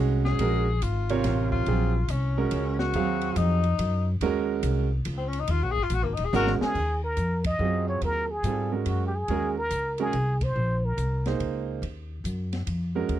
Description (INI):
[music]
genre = modal jazz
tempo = 142 BPM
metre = 3/4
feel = swing 65% on 8ths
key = Eb dorian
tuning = A4 = 438 Hz
[part]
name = clear concert grand piano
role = accompaniment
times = 0.0-13.2 s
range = C3 to F5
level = -28 LUFS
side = right 8 dB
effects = none
[part]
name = upright bass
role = bass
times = 0.0-13.2 s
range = Eb1 to Ab2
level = -27 LUFS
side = equal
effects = none
[part]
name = warm tenor saxophone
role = second line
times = 0.2-6.5 s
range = Bb3 to Bb4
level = -29 LUFS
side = left 6 dB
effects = none
[part]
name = open jazz drum kit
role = drums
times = 0.2-13.2 s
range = crash cymbal, hi-hat, kick drum, ride cymbal, snare drum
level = -38 LUFS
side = left 1 dB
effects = none
[part]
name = trumpet with plunger mute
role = melody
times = 6.3-11.3 s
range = Gb4 to Eb5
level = -29 LUFS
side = equal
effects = none
[sound]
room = little or no reverb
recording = dry, close 1970s-style studio recording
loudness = -24 LUFS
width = side -12 dB against mid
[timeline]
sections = 0.0-6.7 A section; 6.7-13.2 B section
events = tenor saxophone solo 0.0-6.7; drum fill 6.3-6.7; band accent 7.4, 10.3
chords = 0.0 Absus2; 1.7 Ebm11; 4.2 Absus2; 6.7 Ebm11; 9.3 Absus2; 11.8 Ebm11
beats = | 0.40 0.82 1.24 | 1.67 2.09 2.51 | 2.94 3.36 3.78 | 4.21 4.63 5.05 | 5.48 5.90 6.32 | 6.75 7.17 7.59 | 8.02 8.44 8.87 | 9.29 9.71 10.14 | 10.56 10.98 11.41 | 11.83 12.25 12.67 | 13.10